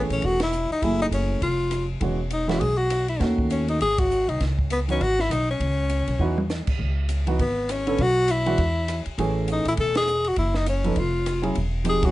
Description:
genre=jazz, small-group swing and bop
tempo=201 BPM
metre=4/4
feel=swing 60% on 8ths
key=C# minor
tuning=A4 = 440 Hz
part: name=warm upright piano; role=accompaniment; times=0.0-12.1 s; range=D3 to A4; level=-27 LUFS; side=right 2 dB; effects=none
part: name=upright bass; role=bass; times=0.0-12.1 s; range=E1 to E2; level=-25 LUFS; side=equal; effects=none
part: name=warm tenor saxophone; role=melody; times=0.1-12.1 s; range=B3 to A4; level=-24 LUFS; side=left 2 dB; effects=none
part: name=compact cocktail drum kit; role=drums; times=0.1-12.1 s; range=crash cymbal, hi-hat, kick drum, ride cymbal, rim click, snare drum, toms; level=-31 LUFS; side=equal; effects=none
room=light reverb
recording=nothing above 10.5 kHz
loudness=-21 LUFS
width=side -16 dB against mid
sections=0.0-6.8 A section; 6.8-12.1 A section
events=band accent 0.4, 4.0, 9.9; drum fill 6.2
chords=0.0 Amaj7; 0.8 F#m9; 1.4 N.C.; 2.0 E69; 3.2 D#m7b5; 3.8 G#7; 4.4 C#m7; 6.8 C#7(no3); 8.0 Bm; 8.6 N.C.; 9.2 Amaj7; 10.4 F#m; 11.0 Fmmaj7; 11.6 E69

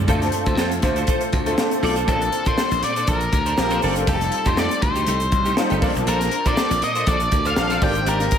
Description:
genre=polished 1980s jazz-funk pop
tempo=120 BPM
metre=4/4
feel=swing 54% on 16ths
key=Bb major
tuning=A4 = 441 Hz
part: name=clear baby grand piano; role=accompaniment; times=0.0-8.4 s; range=G3 to A5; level=-25 LUFS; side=left 1 dB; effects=ensemble chorus, slapback echo
part: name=glassy slap bass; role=bass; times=0.0-8.3 s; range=F1 to Bb2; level=-24 LUFS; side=equal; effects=none
part: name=clean electric guitar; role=riff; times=0.1-8.4 s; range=A3 to D5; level=-28 LUFS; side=right 3 dB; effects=ensemble chorus, slapback echo
part: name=crisp fusion drum kit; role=drums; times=0.1-8.4 s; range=hi-hat, kick drum, snare drum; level=-23 LUFS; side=equal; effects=none
part: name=egg shaker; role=percussion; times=0.1-8.4 s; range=none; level=-41 LUFS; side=right 8 dB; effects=none
part: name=octave-fuzz lead guitar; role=melody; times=2.1-8.4 s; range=A4 to G5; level=-23 LUFS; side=left 2 dB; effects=distortion, slapback echo
room=moderate lush hall reverb, RT60 1.8 s, small room ambience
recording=big arena sound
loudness=-18 LUFS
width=side -8 dB against mid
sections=0.1-2.1 A section; 2.1-8.4 B section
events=none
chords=0.1 Dm7; 2.1 Bbmaj9; 4.1 F9; 5.8 Bbmaj9; 7.8 Abmaj9#11

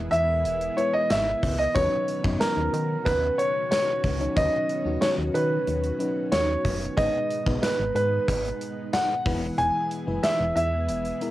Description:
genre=1980s-style pop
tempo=92 BPM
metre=4/4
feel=straight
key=B major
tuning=A4 = 439 Hz
part: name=FM electric piano with soft pad layer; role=accompaniment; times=0.0-11.3 s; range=F#3 to C#5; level=-32 LUFS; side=left 2 dB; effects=chorus, tremolo, cassette tape
part: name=string machine, cellos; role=sustained chords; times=0.0-11.3 s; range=D#3 to G#4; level=-34 LUFS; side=equal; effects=ensemble chorus, cassette tape
part: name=solid FM bass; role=bass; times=0.0-11.1 s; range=E1 to D#3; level=-29 LUFS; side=equal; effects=none
part: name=warm concert grand piano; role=melody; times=0.1-11.3 s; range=A#4 to G#5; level=-25 LUFS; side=right 1 dB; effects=cassette tape
part: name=gated 80s drum kit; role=drums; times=0.1-11.3 s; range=hi-hat, kick drum, snare drum, tambourine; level=-28 LUFS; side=equal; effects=cassette tape
room=moderate studio reverb, RT60 0.6 s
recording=home recording on cassette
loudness=-22 LUFS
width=side -15 dB against mid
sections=0.0-11.3 A section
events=none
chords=0.0 E; 1.8 Badd9; 7.0 G#m; 9.3 E

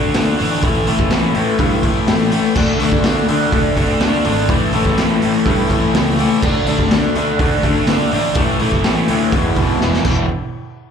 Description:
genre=quiet-loud alternative rock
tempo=124 BPM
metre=4/4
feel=straight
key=unclear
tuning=A4 = 443 Hz
part: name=biting overdriven guitar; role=riff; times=0.0-10.3 s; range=E2 to D4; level=-21 LUFS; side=right 13 dB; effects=phaser, slapback echo
part: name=crunchy overdriven guitar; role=riff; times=0.0-10.3 s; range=E2 to D4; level=-19 LUFS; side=left 12 dB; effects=spring reverb, slapback echo
part: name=fuzz picked electric bass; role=bass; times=0.0-10.3 s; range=E1 to G2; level=-21 LUFS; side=equal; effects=overdrive
part: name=raw garage drum kit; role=drums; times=0.1-10.2 s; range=crash cymbal, hi-hat, kick drum, snare drum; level=-18 LUFS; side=right 1 dB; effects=none
part: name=raw garage guitar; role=riff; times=2.6-10.3 s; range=E2 to D4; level=-23 LUFS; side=right 4 dB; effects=overdrive, slapback echo
room=little or no reverb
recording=live gig heard through the venue's PA, club reverb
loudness=-13 LUFS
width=side -7 dB against mid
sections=0.0-10.3 A section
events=drum fill 9.8-10.3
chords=0.0 D5; 0.6 A5; 2.6 D5; 4.5 A; 6.4 D5; 8.4 A5; 9.3 E5; 10.3 N.C.

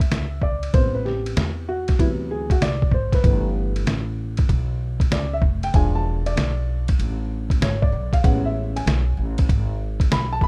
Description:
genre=hip hop, jazz-hop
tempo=96 BPM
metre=4/4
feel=swing 66% on 16ths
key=unclear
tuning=A4 = 439 Hz
part: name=dark grand piano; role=accompaniment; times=0.0-10.5 s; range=C3 to B5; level=-29 LUFS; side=equal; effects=plate reverb
part: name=upright bass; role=bass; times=0.0-10.5 s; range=E1 to E2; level=-27 LUFS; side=equal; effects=none
part: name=trip hop sampler-style drum kit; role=drums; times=0.0-10.5 s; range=hi-hat, kick drum, ride cymbal, snare drum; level=-22 LUFS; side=equal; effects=none
room=little or no reverb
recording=rough home demo mix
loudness=-22 LUFS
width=mono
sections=0.0-10.5 A section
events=grand piano solo 0.0-10.5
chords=0.0 Dsus2; 0.7 Am9; 2.0 D13; 3.2 G69; 5.7 E7b9; 8.2 Amaj9

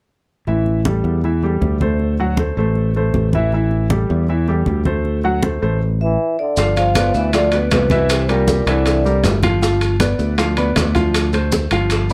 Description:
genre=Afro-Cuban jazz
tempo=158 BPM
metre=4/4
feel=straight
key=G mixolydian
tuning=A4 = 439 Hz
part: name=warm concert grand piano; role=accompaniment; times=0.5-12.1 s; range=E3 to F#5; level=-23 LUFS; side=equal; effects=none
part: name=fingered electric bass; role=bass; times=0.5-12.1 s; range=G1 to E2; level=-20 LUFS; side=equal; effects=none
part: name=congas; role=percussion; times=0.5-12.1 s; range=none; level=-24 LUFS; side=equal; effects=none
part: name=vibraphone with medium mallets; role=melody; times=6.0-9.2 s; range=Bb4 to F5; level=-22 LUFS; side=equal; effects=none
part: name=trombone with cup mute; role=second line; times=6.0-9.2 s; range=Bb2 to F3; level=-26 LUFS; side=equal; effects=none
part: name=bongos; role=percussion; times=6.6-12.1 s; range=none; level=-28 LUFS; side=equal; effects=none
part: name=maracas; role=percussion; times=6.6-12.1 s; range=none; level=-33 LUFS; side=equal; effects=none
part: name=timbales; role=percussion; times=6.8-12.1 s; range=none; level=-27 LUFS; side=equal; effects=none
room=moderate small room reverb, RT60 0.6 s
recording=none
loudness=-17 LUFS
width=mono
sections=0.5-6.6 A section; 6.6-12.1 B section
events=none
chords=0.5 Am7; 2.0 D7; 3.5 Am7; 5.1 D7; 6.6 G7; 8.1 C9; 9.6 G7; 11.1 Dm7

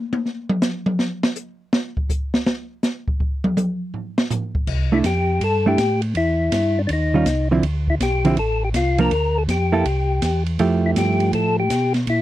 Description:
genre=soul jazz organ trio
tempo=162 BPM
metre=4/4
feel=swing 66% on 8ths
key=C major from 4.7 s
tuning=A4 = 440 Hz
part: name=open jazz drum kit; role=drums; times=0.1-12.2 s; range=crash cymbal, hi-hat, kick drum, ride cymbal, snare drum, toms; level=-23 LUFS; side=equal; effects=none
part: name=mellow tonewheel organ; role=bass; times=4.7-12.2 s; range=A1 to B2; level=-21 LUFS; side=equal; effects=chorus vibrato, slow rotary speaker
part: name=percussive tonewheel organ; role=melody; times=4.9-12.2 s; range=D4 to Bb4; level=-21 LUFS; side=left 2 dB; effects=slow rotary speaker
part: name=hollow-body jazz guitar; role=accompaniment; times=4.9-11.6 s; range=D3 to A4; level=-18 LUFS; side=right 3 dB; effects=none
room=little or no reverb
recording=dry, close 1970s-style studio recording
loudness=-18 LUFS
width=side -14 dB against mid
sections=0.0-4.7 A section; 4.7-12.2 B section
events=drum solo 0.0-4.7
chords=0.3 N.C.; 4.7 C69; 6.2 Em; 6.9 Eb9; 7.6 Dm7; 9.1 Gm7; 9.9 C; 10.6 Fmaj9

